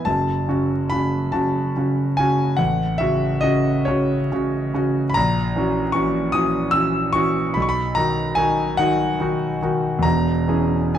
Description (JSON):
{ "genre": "classical, romantic nocturne for solo piano", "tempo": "42-51 BPM (dotted quarters)", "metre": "12/8", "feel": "rubato", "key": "B major from 5.2 s", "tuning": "A4 = 441 Hz", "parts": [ { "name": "warm concert grand piano", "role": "solo", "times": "0.0-11.0 s", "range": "E1 to E6", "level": "-18 LUFS", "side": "equal", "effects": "none" } ], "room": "moderate recital hall reverb, RT60 1.3 s", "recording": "close, detailed microphones, vinyl crackle", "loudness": "-18 LUFS", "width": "side -10 dB against mid", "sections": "0.0-11.0 A section", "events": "none", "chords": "0.1 F#m; 2.6 F#m/A; 5.2 F#7/A#; 7.5 B; 10.0 C#m/E", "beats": "| 0.07 1.34 2.59 3.87 | 5.15 6.33 7.55 8.79 | 10.04" }